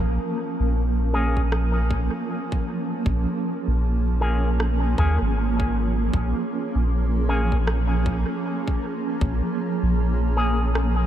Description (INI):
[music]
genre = ambient dub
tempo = 78 BPM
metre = 4/4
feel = swing 60% on 16ths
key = Bb minor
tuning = A4 = 440 Hz
[part]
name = granular cloud pad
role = sustained chords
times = 0.0-11.1 s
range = F3 to Bb4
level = -26 LUFS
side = right 2 dB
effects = built-in reverb
[part]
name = soft dub sub bass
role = bass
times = 0.0-11.1 s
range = Ab1 to Eb2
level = -22 LUFS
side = equal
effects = none
[part]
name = electric guitar with an envelope filter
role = stabs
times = 1.1-10.6 s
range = Bb3 to Ab4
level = -31 LUFS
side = left 1 dB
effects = vibrato effect, low-pass filter, dub echo
[part]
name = electronic kick drum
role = drums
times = 1.4-9.4 s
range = none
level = -26 LUFS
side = equal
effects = none
[part]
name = electronic rim click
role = drums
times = 1.5-10.9 s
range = none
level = -36 LUFS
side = equal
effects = dub echo
[sound]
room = light reverb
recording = none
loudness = -21 LUFS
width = side -11 dB against mid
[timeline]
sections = 0.0-11.1 A section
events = none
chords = 0.0 Bbm7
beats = 0.75 1.52 2.29 | 3.06 3.83 4.60 5.37 | 6.14 6.91 7.68 8.45 | 9.21 9.98 10.75